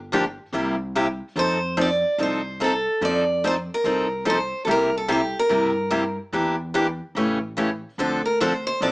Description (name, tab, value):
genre	acoustic string swing (jazz manouche)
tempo	145 BPM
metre	4/4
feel	swing 63% on 8ths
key	unclear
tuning	A4 = 441 Hz
part	upright bass	bass	0.0-8.9 s	G1 to G2	-32 LUFS	equal	none
part	picked steel-string acoustic guitar	accompaniment	0.1-8.9 s	C3 to A4	-22 LUFS	equal	none
part	picked steel-string acoustic guitar	melody	1.4-8.9 s	G4 to D5	-22 LUFS	equal	none
room	moderate studio reverb, RT60 0.6 s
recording	small speaker sound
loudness	-20 LUFS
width	side -23 dB against mid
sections	0.0-8.9 A section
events	none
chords	0.0 Gm7; 0.5 C7; 1.4 F7; 4.7 C7; 6.3 Em7b5; 7.2 A7; 8.0 Dm7